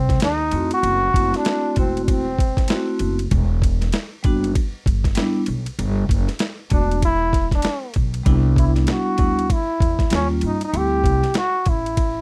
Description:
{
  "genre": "hip hop, jazz-hop",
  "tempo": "97 BPM",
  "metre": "4/4",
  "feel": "swing 60% on 16ths",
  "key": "unclear",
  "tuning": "A4 = 441 Hz",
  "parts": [
    { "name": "clear trombone", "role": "melody", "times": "0.0-3.0, 6.7-12.2 s", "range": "C4 to G4", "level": "-24 LUFS", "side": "equal", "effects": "none" },
    { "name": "upright bass", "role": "bass", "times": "0.0-12.2 s", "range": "E1 to G2", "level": "-24 LUFS", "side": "equal", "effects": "none" },
    { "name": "boom bap sampler-style drum kit", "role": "drums", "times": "0.1-12.1 s", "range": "hi-hat, kick drum, ride cymbal, snare drum", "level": "-23 LUFS", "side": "equal", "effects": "none" },
    { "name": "vibraphone with medium mallets", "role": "accompaniment", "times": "0.5-11.2 s", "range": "G3 to F#4", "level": "-26 LUFS", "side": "equal", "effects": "none" }
  ],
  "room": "little or no reverb",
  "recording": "none",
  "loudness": "-20 LUFS",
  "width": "mono",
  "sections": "0.0-12.2 A section",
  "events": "none",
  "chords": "0.2 D#sus2; 0.8 F#m7b5; 3.3 Em9; 5.8 Gmaj7; 8.3 Cmaj7; 10.1 D#9; 10.7 D9sus4",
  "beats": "0.22 | 0.84 1.46 2.08 2.69 | 3.31 3.93 4.55 5.17 | 5.79 6.41 7.03 7.64 | 8.26 8.88 9.50 10.12 | 10.74 11.36 11.97"
}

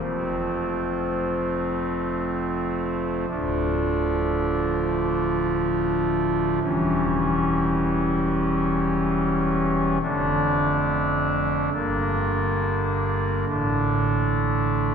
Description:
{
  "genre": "classical, chorale-style piece for pipe organ",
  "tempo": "free time",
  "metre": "none",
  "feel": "none",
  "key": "F major, D minor from 3.3 s",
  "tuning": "A4 = 436 Hz",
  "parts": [
    { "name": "pipe organ, foundations", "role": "solo", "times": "0.0-14.9 s", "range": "D1 to D4", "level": "-21 LUFS", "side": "equal", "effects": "none" }
  ],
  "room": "wet church reverb, RT60 3.5 s",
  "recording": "heard from further back in the room",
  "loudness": "-21 LUFS",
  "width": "side -6 dB against mid",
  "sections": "0.0-14.9 A section",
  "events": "none",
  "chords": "0.0 F; 3.3 Dm; 6.6 C#dim/E; 10.0 Dm/F; 11.7 Gm; 13.5 Asus4",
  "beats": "free time"
}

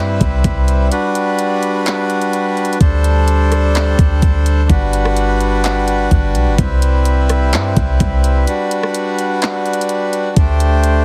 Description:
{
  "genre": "hip hop, atmospheric cloud-rap",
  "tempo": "127 BPM",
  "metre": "4/4",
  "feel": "half-time",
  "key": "G major",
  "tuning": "A4 = 439 Hz",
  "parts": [
    { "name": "accordion", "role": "sustained chords", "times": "0.0-11.0 s", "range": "G3 to C5", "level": "-19 LUFS", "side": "equal", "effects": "sidechain pumping" },
    { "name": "warm 808-style bass", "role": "bass", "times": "0.0-11.0 s", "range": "G1 to G2", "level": "-16 LUFS", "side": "equal", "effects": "none" },
    { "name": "trap drum kit", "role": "drums", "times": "0.2-10.9 s", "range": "handclaps, hi-hat, kick drum, rim click", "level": "-19 LUFS", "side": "equal", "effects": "overdrive" }
  ],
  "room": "digital ambience",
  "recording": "heavily compressed radio sound, multiband compression",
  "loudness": "-15 LUFS",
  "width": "mono",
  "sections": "0.0-2.8 A section; 2.8-11.0 B section",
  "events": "break 0.9-2.8, 8.5-10.4",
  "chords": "0.0 Cmaj7; 0.9 Gmaj7; 2.8 D7sus4; 4.7 Gmaj7; 6.6 Cmaj7; 8.5 Gmaj7; 10.4 D7sus4",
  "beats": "0.44 | 0.92 1.39 1.86 2.33 | 2.81 3.28 3.75 4.22 | 4.70 5.17 5.64 6.11 | 6.58 7.06 7.53 8.00 | 8.47 8.95 9.42 9.89 | 10.37 10.84"
}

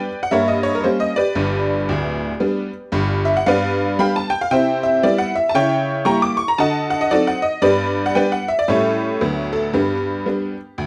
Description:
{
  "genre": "jazz, stride piano",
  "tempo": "115 BPM",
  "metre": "4/4",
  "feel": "swing 62% on 8ths",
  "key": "G major",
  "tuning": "A4 = 441 Hz",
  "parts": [
    { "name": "tack piano", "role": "solo", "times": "0.0-10.9 s", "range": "D1 to D6", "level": "-19 LUFS", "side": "equal", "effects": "none" }
  ],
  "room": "moderate large studio reverb, RT60 0.8 s",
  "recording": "band playing live in one room",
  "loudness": "-19 LUFS",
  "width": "mono",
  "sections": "0.0-10.9 A section",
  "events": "none",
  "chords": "0.3 Gdim; 1.4 G; 3.4 G7; 4.5 Cmaj7; 5.5 C#dim7; 6.6 D7b9; 7.6 G; 8.7 A7; 9.2 D69; 9.7 G",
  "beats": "0.31 0.83 | 1.36 1.88 2.40 2.92 | 3.45 3.97 4.49 5.02 | 5.54 6.06 6.58 7.11 | 7.63 8.15 8.68 9.20 | 9.72 10.24 10.76"
}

